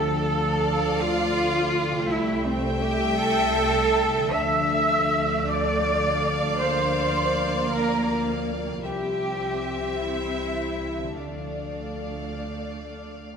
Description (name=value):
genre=cinematic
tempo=53 BPM (dotted quarters)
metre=6/8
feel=rubato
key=D minor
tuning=A4 = 440 Hz
part: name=warm studio violin section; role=melody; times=0.0-13.3 s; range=E5 to G5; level=-33 LUFS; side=left 3 dB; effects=none
part: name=clear studio violin section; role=second line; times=0.0-13.3 s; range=D5 to E5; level=-34 LUFS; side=left 2 dB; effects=none
part: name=mellow hollow flute section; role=second line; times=0.0-13.1 s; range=C5 to E6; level=-30 LUFS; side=equal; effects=none
part: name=rich studio viola section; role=accompaniment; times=0.0-13.3 s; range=A3 to C4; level=-32 LUFS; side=right 2 dB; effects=none
part: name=dark French horn section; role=sustained chords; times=0.0-13.2 s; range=E3 to Bb4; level=-33 LUFS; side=left 4 dB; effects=none
part: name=concert harp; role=arpeggios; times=0.0-13.4 s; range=G2 to F4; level=-35 LUFS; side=left 6 dB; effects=none
part: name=rich studio cello section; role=bass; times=0.0-13.1 s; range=C4 to E5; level=-26 LUFS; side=right 2 dB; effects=none
part: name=rich studio double bass section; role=bass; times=0.0-13.3 s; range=C2 to D2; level=-32 LUFS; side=right 3 dB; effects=none
room=wet concert hall reverb, RT60 1.7 s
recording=minimal, uncompressed stereo recording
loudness=-22 LUFS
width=side -6 dB against mid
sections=0.0-13.4 A section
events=none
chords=0.0 Dm; 2.1 Am7/C; 4.3 Dm; 6.6 Bb/D; 8.8 C; 11.2 Dm